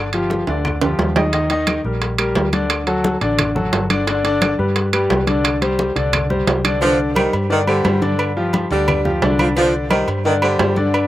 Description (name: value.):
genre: latin, salsa.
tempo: 175 BPM.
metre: 4/4.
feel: straight.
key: C minor.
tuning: A4 = 440 Hz.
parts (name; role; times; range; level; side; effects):
clear concert grand piano; accompaniment; 0.0-11.1 s; D3 to Eb5; -19 LUFS; left 2 dB; slapback echo.
vintage muted fingered electric bass; bass; 0.0-11.1 s; G1 to G2; -23 LUFS; equal; none.
bongos and cowbell; percussion; 0.1-11.1 s; none; -29 LUFS; left 3 dB; slapback echo.
congas; percussion; 0.1-11.1 s; none; -24 LUFS; left 2 dB; none.
timbales and agogo bells; percussion; 0.1-11.1 s; none; -23 LUFS; right 4 dB; none.
claves; percussion; 0.7-11.1 s; none; -29 LUFS; right 4 dB; none.
mellow saxophone section; second line; 6.8-11.1 s; D3 to G3; -19 LUFS; right 2 dB; none.
room: little or no reverb.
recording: recorded outdoors, with no room sound.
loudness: -15 LUFS.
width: side -14 dB against mid.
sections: 0.0-6.8 A section; 6.8-11.1 B section.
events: drum fill 0.5-1.3.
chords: 0.0 G5; 1.3 Eb; 2.7 D; 4.1 G; 5.4 Csus2; 8.2 G5; 9.6 Csus2.